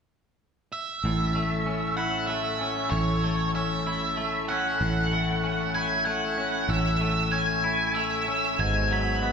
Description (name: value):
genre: rock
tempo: 96 BPM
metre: 3/4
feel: straight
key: A major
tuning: A4 = 440 Hz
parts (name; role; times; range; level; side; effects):
- octave-fuzz lead guitar; melody; 0.7-9.3 s; C#5 to B5; -27 LUFS; right 1 dB; distortion
- pipe organ, cornet; sustained chords; 1.0-9.3 s; G#3 to E5; -36 LUFS; right 2 dB; none
- fingered electric bass; bass; 1.0-9.3 s; G#1 to A1; -29 LUFS; equal; none
- twangy electric guitar; arpeggios; 1.1-9.3 s; G#2 to E4; -30 LUFS; left 1 dB; none
room: wet church reverb, RT60 3.5 s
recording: band playing live in one room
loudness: -24 LUFS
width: side -6 dB against mid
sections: 0.0-1.0 A section; 1.0-9.3 B section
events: none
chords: 0.0 N.C.; 1.0 A; 8.6 Eadd9/G#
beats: 0.42 | 1.05 1.67 2.30 | 2.93 3.55 4.18 | 4.81 5.44 6.07 | 6.70 7.32 7.95 | 8.58 9.21